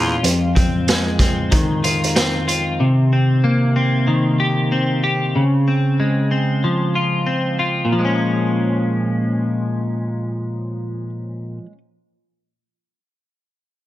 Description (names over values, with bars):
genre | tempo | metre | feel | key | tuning
indie pop, bedroom pop | 94 BPM | 4/4 | swing 60% on 16ths | Bb dorian | A4 = 440 Hz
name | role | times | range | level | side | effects
clean electric guitar | accompaniment | 0.0-11.8 s | F2 to G4 | -17 LUFS | equal | analog chorus, warbly pitch drift
raw garage drum kit | drums | 0.2-2.7 s | hi-hat, kick drum, snare drum | -18 LUFS | equal | none
room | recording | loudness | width
light reverb | none | -16 LUFS | side -14 dB against mid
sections
0.0-7.9 A section; 7.9-10.5 B section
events
none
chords
0.2 Fm7; 2.8 Cm7; 5.4 Dbmaj7; 7.9 Bbm7